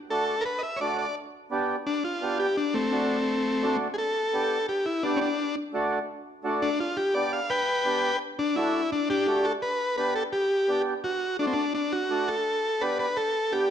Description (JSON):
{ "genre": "latin", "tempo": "170 BPM", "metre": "4/4", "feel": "straight", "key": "G major", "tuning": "A4 = 439 Hz", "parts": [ { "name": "combo organ", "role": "melody", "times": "0.1-13.7 s", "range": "A3 to G5", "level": "-25 LUFS", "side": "left 1 dB", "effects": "none" }, { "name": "mellow accordion", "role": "accompaniment", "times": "0.1-13.7 s", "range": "A3 to G4", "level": "-30 LUFS", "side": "right 2 dB", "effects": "none" } ], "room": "wet large studio reverb, RT60 1.3 s", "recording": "dark, warm production", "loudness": "-24 LUFS", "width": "side -9 dB against mid", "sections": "0.0-9.6 A section; 9.6-13.7 B section", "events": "transistor combo organ solo 0.0-9.6", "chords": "0.0 D; 1.2 G; 2.6 D7; 4.0 G; 5.4 D; 6.8 G; 8.2 D; 9.6 G; 11.0 D; 12.5 G", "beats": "0.10 0.45 0.81 | 1.16 1.51 1.86 2.22 | 2.57 2.92 3.27 3.63 | 3.98 4.33 4.68 5.04 | 5.39 5.74 6.09 6.45 | 6.80 7.15 7.51 7.86 | 8.21 8.56 8.92 9.27 | 9.62 9.98 10.33 10.69 | 11.04 11.39 11.75 12.10 | 12.46 12.81 13.17 13.52" }